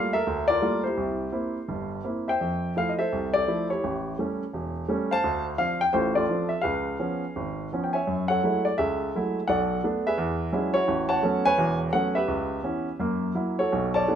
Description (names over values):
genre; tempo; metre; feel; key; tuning
solo jazz; 170 BPM; 4/4; swing 64% on 8ths, rubato; F# minor from 8.1 s; A4 = 439 Hz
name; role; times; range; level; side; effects
warm baby grand piano; solo; 0.0-14.2 s; E1 to A5; -24 LUFS; equal; none
room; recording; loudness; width
moderate club reverb, RT60 0.9 s; minimal, uncompressed stereo recording; -24 LUFS; side -9 dB against mid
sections
0.0-8.1 A section; 8.1-14.2 B section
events
none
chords
0.0 Gm9; 1.0 C7; 2.4 Fmaj7; 3.8 A7; 5.2 Dm7; 6.6 C#7; 8.1 F#m9; 9.5 Bm7; 10.2 E13; 10.9 A69; 12.3 C#m7b5; 13.0 F#7